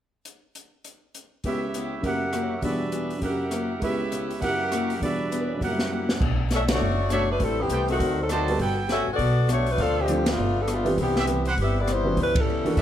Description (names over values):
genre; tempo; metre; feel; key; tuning
jazz, big band swing; 201 BPM; 4/4; swing 61% on 8ths; B minor; A4 = 440 Hz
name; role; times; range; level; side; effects
open jazz drum kit; drums; 0.3-12.8 s; crash cymbal, hi-hat, kick drum, ride cymbal, rim click, snare drum; -30 LUFS; equal; none
picked acoustic archtop guitar; accompaniment; 1.4-12.8 s; F#2 to B4; -32 LUFS; left 4 dB; none
bright trumpet section; stabs; 1.4-12.8 s; F#4 to E6; -30 LUFS; right 3 dB; none
warm baby grand piano; accompaniment; 1.5-12.8 s; C#2 to E5; -28 LUFS; right 2 dB; none
upright bass; bass; 6.2-12.8 s; F#1 to F#2; -26 LUFS; equal; none
clear saxophone section; melody; 6.5-12.8 s; D#3 to E5; -25 LUFS; left 2 dB; none
room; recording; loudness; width
moderate recital hall reverb, RT60 1.5 s; none; -22 LUFS; side -10 dB against mid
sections
0.2-1.4 A section; 1.4-6.2 B section; 6.2-12.8 C section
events
drum fill 5.9; band accent 6.7, 10.2, 12.3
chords
0.2 N.C.; 1.4 C#m7b5; 2.0 F#7b9; 2.6 Em7; 3.2 F#7b9; 3.8 C#m7b5; 4.4 F#7b9; 5.0 Em7; 5.6 F#7b9; 6.2 Bm11; 7.4 Am9; 8.0 D7b9; 8.6 Gmaj9; 9.8 Dm7; 10.4 G9; 11.0 Cmaj7; 12.2 C#m7b5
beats
| 0.25 0.55 0.84 1.14 | 1.44 1.74 2.03 2.33 | 2.63 2.93 3.22 3.52 | 3.82 4.12 4.42 4.71 | 5.01 5.31 5.61 5.91 | 6.21 6.50 6.80 7.10 | 7.40 7.70 8.00 8.29 | 8.59 8.89 9.19 9.49 | 9.79 10.09 10.39 10.69 | 10.98 11.28 11.58 11.88 | 12.18 12.48 12.78